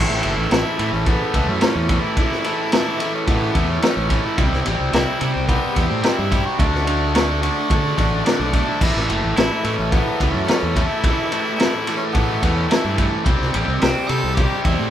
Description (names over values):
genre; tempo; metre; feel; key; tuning
classic rock; 108 BPM; 4/4; straight; unclear; A4 = 439 Hz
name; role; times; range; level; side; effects
edgy tenor saxophone; melody; 0.0-14.9 s; B3 to A4; -26 LUFS; right 1 dB; none
overdriven electric guitar; riff; 0.0-14.9 s; A2 to D4; -22 LUFS; equal; none
fuzz fingered electric bass; bass; 0.0-14.9 s; F#1 to D3; -23 LUFS; equal; overdrive
vintage drum kit; drums; 0.1-14.8 s; crash cymbal, kick drum, ride cymbal, snare drum; -20 LUFS; equal; none
room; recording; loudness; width
moderate studio reverb, RT60 0.5 s; band playing live in one room; -16 LUFS; side -10 dB against mid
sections
0.0-14.9 A section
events
none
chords
0.0 A; 4.4 C; 6.6 D; 8.8 A; 13.3 C5